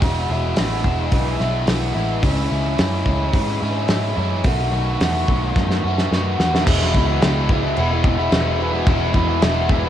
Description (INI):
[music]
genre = rock, shoegaze and dream pop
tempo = 108 BPM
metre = 4/4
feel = straight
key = E major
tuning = A4 = 441 Hz
[part]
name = biting overdriven guitar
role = riff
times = 0.0-9.9 s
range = E2 to F#4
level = -21 LUFS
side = equal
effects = wide subtle chorus, cassette tape
[part]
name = vintage muted picked electric bass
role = bass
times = 0.0-9.9 s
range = E1 to G#2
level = -22 LUFS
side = equal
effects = none
[part]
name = loose indie drum kit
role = drums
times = 0.0-9.8 s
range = crash cymbal, hi-hat, kick drum, snare drum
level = -20 LUFS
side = equal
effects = cassette tape
[sound]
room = little or no reverb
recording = home recording on cassette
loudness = -16 LUFS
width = side -10 dB against mid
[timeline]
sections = 0.0-6.7 A section; 6.7-9.9 B section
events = drum fill 5.6-6.7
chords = 0.0 E; 2.2 C#m; 4.4 B7; 6.7 E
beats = | 0.02 0.57 1.12 1.68 | 2.23 2.78 3.34 3.89 | 4.45 5.00 5.55 6.11 | 6.66 7.21 7.76 8.32 | 8.87 9.42